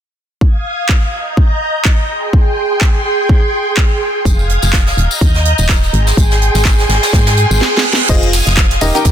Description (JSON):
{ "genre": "piano house", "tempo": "125 BPM", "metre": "4/4", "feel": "swing 56% on 16ths", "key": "Ab major", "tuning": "A4 = 440 Hz", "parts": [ { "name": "string machine, violins", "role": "sustained chords", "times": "0.4-9.1 s", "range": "Ab4 to Ab6", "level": "-17 LUFS", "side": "right 1 dB", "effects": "ensemble chorus, sidechain pumping" }, { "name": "electronic kick drum", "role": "drums", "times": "0.4-9.1 s", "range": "none", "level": "-11 LUFS", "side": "equal", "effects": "small room ambience" }, { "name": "house drum kit", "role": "drums", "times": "0.9-9.1 s", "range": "crash cymbal, handclaps, hi-hat, shaker, snare drum", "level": "-18 LUFS", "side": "equal", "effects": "small room ambience" }, { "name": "solid FM bass", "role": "bass", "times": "4.3-9.1 s", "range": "Eb1 to Ab2", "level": "-14 LUFS", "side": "equal", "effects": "sidechain pumping" }, { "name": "soft brush drum kit", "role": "drums", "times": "4.3-9.1 s", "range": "hi-hat, snare drum", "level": "-20 LUFS", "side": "right 2 dB", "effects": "high-pass filter on hats, small room ambience, high-pass filter on snare, high-pass filter on room" }, { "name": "tambourine", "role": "percussion", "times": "4.3-9.1 s", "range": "none", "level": "-24 LUFS", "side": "left 5 dB", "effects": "none" }, { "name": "reverse cymbal", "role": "sound effects", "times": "7.4-8.1 s", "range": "none", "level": "-19 LUFS", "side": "right 6 dB", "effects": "none" }, { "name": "bright upright piano", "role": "riff", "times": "8.1-9.1 s", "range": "Eb4 to G5", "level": "-16 LUFS", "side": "left 1 dB", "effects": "sidechain pumping, low-pass filter, tape echo" } ], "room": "small room ambience", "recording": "dense, heavily limited modern master", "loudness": "-10 LUFS", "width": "side -10 dB against mid", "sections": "0.4-8.1 A section; 8.1-9.1 B section", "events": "filter sweep on string machine 0.4-8.1; reverse cymbal 7.4-8.1; drum fill 7.6-8.1", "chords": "0.4 Fm7; 1.1 Eb; 2.1 Abmaj7; 4.3 Fm7; 5.0 Eb; 5.9 Abmaj7; 8.1 Fm7", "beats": "| 0.41 0.89 1.37 1.85 | 2.33 2.81 3.29 3.77 | 4.25 4.73 5.21 5.69 | 6.17 6.65 7.13 7.61 | 8.09 8.57 9.05" }